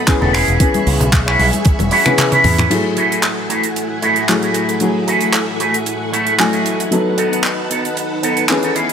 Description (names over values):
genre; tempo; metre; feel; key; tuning
nu-disco, nu disco; 114 BPM; 4/4; swing 53% on 16ths; F# dorian; A4 = 440 Hz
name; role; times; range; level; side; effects
dark baby grand piano; accompaniment; 0.0-8.9 s; E3 to G#5; -19 LUFS; left 2 dB; digital delay
string machine, full ensemble; sustained chords; 0.0-8.9 s; A3 to D#6; -22 LUFS; equal; ensemble chorus, sidechain pumping
electronic kick drum; drums; 0.1-1.8 s; none; -13 LUFS; equal; overdrive
tight funk drum kit; drums; 0.1-8.9 s; crash cymbal, finger snaps, handclaps, hi-hat, toms; -19 LUFS; right 1 dB; none
electric guitar with an envelope filter; riff; 0.2-8.9 s; A3 to D#5; -18 LUFS; right 1 dB; wide subtle chorus, low-pass filter, digital delay
picked electric bass with an envelope filter; bass; 0.2-2.6 s; E1 to E2; -17 LUFS; equal; none
congas; percussion; 0.2-1.9 s; none; -22 LUFS; left 2 dB; none
room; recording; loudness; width
moderate echo chamber reverb, RT60 2.1 s; none; -13 LUFS; side -8 dB against mid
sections
0.0-2.7 A section; 2.7-8.9 B section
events
drum fill 1.7-2.7; kick drops out 2.2-2.7; clean electric guitar fill 6.1-6.9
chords
0.3 E6; 2.7 F#m9; 6.9 B7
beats
0.08 | 0.60 1.13 1.66 2.18 | 2.71 3.23 3.76 4.29 | 4.81 5.34 5.87 6.39 | 6.92 7.45 7.97 8.50